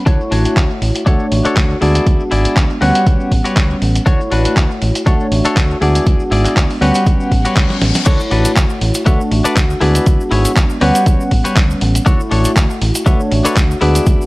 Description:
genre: filtered disco house.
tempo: 120 BPM.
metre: 4/4.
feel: swing 54% on 16ths.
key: D major.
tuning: A4 = 440 Hz.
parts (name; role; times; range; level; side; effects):
tine electric piano; accompaniment; 0.0-14.3 s; G3 to F#5; -17 LUFS; equal; phaser, sidechain pumping, low-pass filter.
direct-recorded clean electric guitar; riff; 0.0-14.2 s; D4 to D5; -20 LUFS; left 2 dB; sidechain pumping, low-pass filter.
fingered electric bass; bass; 0.1-14.2 s; G#1 to D2; -16 LUFS; equal; sidechain pumping, low-pass filter.
dusty soul sampler-style drum kit; drums; 0.1-14.2 s; crash cymbal, handclaps, hi-hat, snare drum; -21 LUFS; equal; sidechain pumping on hats, sidechain pumping on cymbals.
electronic kick drum; drums; 0.1-14.2 s; none; -13 LUFS; equal; overdrive.
maracas; percussion; 0.1-14.3 s; none; -30 LUFS; equal; sidechain pumping on perc, low-pass filter on perc.
reverse cymbal; sound effects; 7.3-8.1 s; none; -25 LUFS; left 6 dB; none.
room: little or no reverb.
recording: dry, gritty hardware recording.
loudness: -11 LUFS.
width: side -21 dB against mid.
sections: 0.0-8.1 A section; 8.1-14.3 B section.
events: reverse cymbal 7.3-8.1; drum fill 7.7-8.1; drop 8.1-14.3.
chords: 0.1 Dmaj7; 1.8 E7/D; 2.8 A13; 4.1 Dmaj7; 5.8 E7/D; 6.8 A13; 8.1 Bm9; 9.8 E7/D; 10.8 A13; 12.1 Dmaj7; 13.1 Bm9.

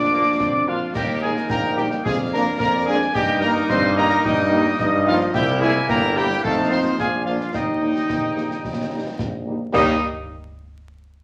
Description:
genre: military-style march for wind band.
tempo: 109 BPM.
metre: 2/4.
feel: straight.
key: Eb major.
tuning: A4 = 441 Hz.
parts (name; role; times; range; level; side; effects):
mellow trumpet section; melody; 0.0-10.0 s; Eb4 to Eb5; -30 LUFS; equal; none.
piccolo; second line; 0.0-10.0 s; Eb5 to Eb6; -27 LUFS; equal; none.
warm euphonium; second line; 0.0-10.0 s; Eb3 to Eb4; -30 LUFS; equal; none.
warm trombone section; sustained chords; 0.0-10.0 s; F3 to F4; -28 LUFS; equal; none.
warm tuba; bass; 0.0-10.0 s; G1 to G2; -28 LUFS; equal; none.
clear woodwind section; second line; 0.1-10.0 s; Bb3 to G5; -32 LUFS; equal; none.
mellow French horn section; accompaniment; 0.1-10.0 s; F3 to F4; -29 LUFS; equal; none.
concert snare drum, concert bass drum and clash cymbals; drums; 0.4-10.0 s; none; -31 LUFS; equal; none.
room: wet large studio reverb, RT60 0.8 s.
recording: vinyl crackle.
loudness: -20 LUFS.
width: mono.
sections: 0.0-9.7 A section; 9.7-10.8 B section.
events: none.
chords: 0.0 Bb; 1.0 Eb; 2.0 Bb/F; 3.1 Eb/G; 5.3 C7; 6.4 F7; 7.0 Bb7; 7.5 Eb.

